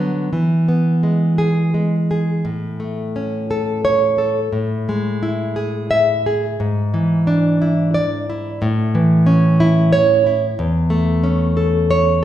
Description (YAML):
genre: romantic piece for solo classical guitar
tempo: 55-63 BPM (dotted quarters)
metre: 6/8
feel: rubato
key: A major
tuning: A4 = 440 Hz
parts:
  - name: nylon-string guitar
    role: solo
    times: 0.0-12.2 s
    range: E2 to E5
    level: -15 LUFS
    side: equal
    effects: none
room: wet recital hall reverb, RT60 1.3 s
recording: recorded in a church or concert hall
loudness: -15 LUFS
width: side -11 dB against mid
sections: 0.0-2.5 A section; 2.5-12.2 B section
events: none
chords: 0.3 E; 2.5 A; 4.5 E/A; 6.6 E7/G#; 8.6 A; 10.6 A/E